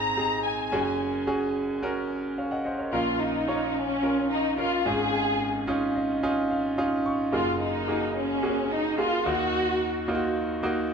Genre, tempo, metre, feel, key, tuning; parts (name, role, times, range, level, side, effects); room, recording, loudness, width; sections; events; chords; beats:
pop; 109 BPM; 4/4; straight; Bb minor; A4 = 441 Hz
dark studio violin section; melody; 0.0-10.1 s; Db4 to Bb5; -27 LUFS; left 2 dB; tape echo
clear concert grand piano; accompaniment; 0.0-10.9 s; Gb1 to Db6; -26 LUFS; right 2 dB
wet large studio reverb, RT60 1.3 s; dark, warm production; -24 LUFS; side -6 dB against mid
0.0-2.9 A section; 2.9-10.9 B section
grand piano fill 5.7-7.3
0.0 Ab; 0.7 Gbsus2; 2.9 Bbm; 4.9 Dbadd9/Ab; 7.3 Gbadd9; 9.3 Ebm
0.17 | 0.72 1.27 1.82 2.37 | 2.92 3.48 4.03 4.58 | 5.13 5.68 6.23 6.78 | 7.33 7.88 8.43 8.98 | 9.53 10.08 10.63